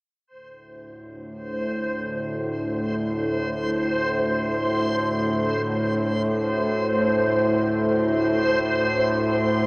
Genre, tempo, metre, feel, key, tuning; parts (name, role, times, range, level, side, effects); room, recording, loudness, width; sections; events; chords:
ambient; free time; A4 = 437 Hz
bowed-like drone; drone; 1.0-9.7 s; D2 to A2; -23 LUFS; equal; built-in reverb
backwards swelling texture; texture; 0.3-9.7 s; C5; -25 LUFS; equal; built-in reverb, shimmer reverb
wet cathedral reverb, RT60 5.5 s; in a vast, echoing space, small speaker sound; -21 LUFS; side -37 dB against mid
0.3-9.7 A section
0.3 D5